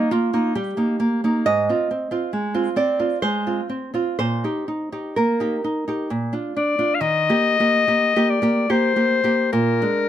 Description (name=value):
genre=romantic duo for clarinet and classical guitar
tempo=60-74 BPM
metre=3/4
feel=rubato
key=Eb major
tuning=A4 = 440 Hz
part: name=nylon-string guitar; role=accompaniment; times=0.0-10.1 s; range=Ab2 to Eb5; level=-20 LUFS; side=right 2 dB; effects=none
part: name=bright clarinet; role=melody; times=6.6-10.1 s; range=Bb4 to F5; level=-18 LUFS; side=left 5 dB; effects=none
room=light reverb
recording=none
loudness=-18 LUFS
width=side -11 dB against mid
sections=0.0-7.0 A section; 7.0-10.1 B section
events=none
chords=0.0 Eb; 1.5 Fm/Ab; 4.2 Eb/Bb; 6.1 Bb; 7.0 Eb; 9.5 Bb7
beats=0.55 | 1.47 2.33 3.22 | 4.18 5.16 6.11 | 7.01 7.88 8.70 | 9.53